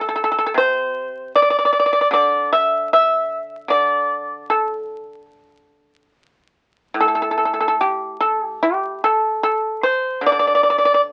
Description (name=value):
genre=chinese traditional, Chinese solo plucked strings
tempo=74 BPM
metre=4/4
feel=uneven beats, rubato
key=unclear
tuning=A4 = 437 Hz
part: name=pipa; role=solo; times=0.0-11.1 s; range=A2 to E5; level=-18 LUFS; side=equal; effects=none
room=light reverb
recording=very old 78 rpm record, vinyl crackle, nothing above 10.3 kHz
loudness=-18 LUFS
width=mono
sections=0.0-7.0 A section; 7.0-11.1 B section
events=none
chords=none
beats=| 0.56 1.34 2.13 2.91 | 3.69 4.48 5.29 6.13 | 6.97 7.80 8.62 9.44 | 10.26 11.06